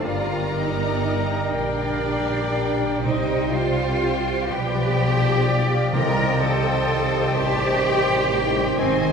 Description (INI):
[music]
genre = classical, slow romantic movement for symphony orchestra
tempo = 42 BPM (dotted quarters)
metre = 6/8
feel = rubato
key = unclear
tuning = A4 = 444 Hz
[part]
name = rich symphonic violin section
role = melody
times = 0.0-9.1 s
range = G5 to Bb5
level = -32 LUFS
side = left 5 dB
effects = none
[part]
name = clear symphonic violin section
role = second line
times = 0.0-9.1 s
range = C5 to Bb5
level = -33 LUFS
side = left 1 dB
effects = none
[part]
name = mellow clarinet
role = second line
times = 0.0-9.0 s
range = Bb4 to D5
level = -32 LUFS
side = equal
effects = none
[part]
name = silver concert flute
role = second line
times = 0.0-8.9 s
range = G5 to Ab5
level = -35 LUFS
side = left 6 dB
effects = none
[part]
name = rich symphonic viola section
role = accompaniment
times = 0.0-9.1 s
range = G4 to Eb5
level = -30 LUFS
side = right 2 dB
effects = none
[part]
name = warm bassoon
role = accompaniment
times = 0.0-8.9 s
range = Eb3 to G3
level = -32 LUFS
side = equal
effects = none
[part]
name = warm French horn section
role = sustained chords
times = 0.0-9.1 s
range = G3 to Ab4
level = -32 LUFS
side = right 1 dB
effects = none
[part]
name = warm trombone section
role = sustained chords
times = 0.0-9.1 s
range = C3 to Ab3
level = -33 LUFS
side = right 1 dB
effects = none
[part]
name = concert harp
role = arpeggios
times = 0.0-9.1 s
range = G2 to C6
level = -29 LUFS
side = left 2 dB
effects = none
[part]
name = warm trumpet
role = stabs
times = 0.0-9.1 s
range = Bb4 to D5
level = -32 LUFS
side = right 1 dB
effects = none
[part]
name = clear symphonic double bass section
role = bass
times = 0.0-9.1 s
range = G1 to C2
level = -26 LUFS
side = equal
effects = none
[part]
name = rich symphonic cello section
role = bass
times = 0.0-9.1 s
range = C4 to Bb4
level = -25 LUFS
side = right 2 dB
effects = none
[part]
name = timpani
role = percussion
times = 5.9-7.3 s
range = C3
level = -29 LUFS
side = left 1 dB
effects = none
[sound]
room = wet scoring stage reverb, RT60 2.0 s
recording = heard from further back in the room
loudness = -19 LUFS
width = side -6 dB against mid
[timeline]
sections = 0.0-9.1 A section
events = none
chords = 0.1 Gm; 3.0 Cm; 4.5 G7/B; 5.9 Cm